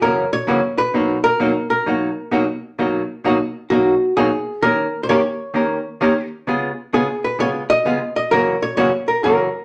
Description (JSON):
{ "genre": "country", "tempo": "130 BPM", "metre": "4/4", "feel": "swing 66% on 8ths", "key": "B major", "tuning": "A4 = 441 Hz", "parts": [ { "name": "archtop guitar, miked and amplified", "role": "melody", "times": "0.0-9.6 s", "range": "F#4 to D#5", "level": "-21 LUFS", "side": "equal", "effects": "none" }, { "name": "archtop guitar, miked and amplified", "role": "accompaniment", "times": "0.0-9.5 s", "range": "F#2 to A#4", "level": "-21 LUFS", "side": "equal", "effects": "none" } ], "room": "wet studio reverb, RT60 0.6 s", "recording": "none", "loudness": "-19 LUFS", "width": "mono", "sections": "0.0-2.8 A section; 2.8-9.6 A section", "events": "none", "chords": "0.0 F#7; 0.9 Bmaj7; 4.6 D#7; 6.5 C#7; 8.3 F#7" }